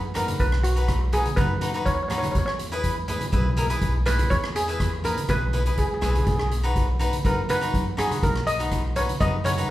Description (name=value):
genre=calypso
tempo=123 BPM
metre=4/4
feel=straight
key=B major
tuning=A4 = 440 Hz
part: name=upright bass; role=bass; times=0.0-9.6 s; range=B1 to F#2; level=-26 LUFS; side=equal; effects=none
part: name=cavaquinho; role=accompaniment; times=0.1-9.7 s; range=D#4 to B4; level=-29 LUFS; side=left 2 dB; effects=none
part: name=street-band drum kit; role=drums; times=0.1-9.7 s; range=hi-hat, kick drum, rim click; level=-27 LUFS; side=equal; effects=none
part: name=steel pan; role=melody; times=0.2-9.7 s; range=F#4 to D#5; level=-27 LUFS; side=right 1 dB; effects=none
part: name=congas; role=percussion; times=0.2-9.6 s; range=none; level=-32 LUFS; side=right 1 dB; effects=none
room=moderate large studio reverb, RT60 1.2 s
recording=band playing live in one room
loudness=-21 LUFS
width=side -15 dB against mid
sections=0.0-9.7 A section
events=steel pan solo 0.0-9.7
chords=0.0 B; 2.4 E; 6.3 B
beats=| 0.40 0.89 1.38 1.86 | 2.35 2.84 3.33 3.82 | 4.31 4.80 5.29 5.78 | 6.27 6.76 7.25 7.74 | 8.22 8.71 9.20 9.69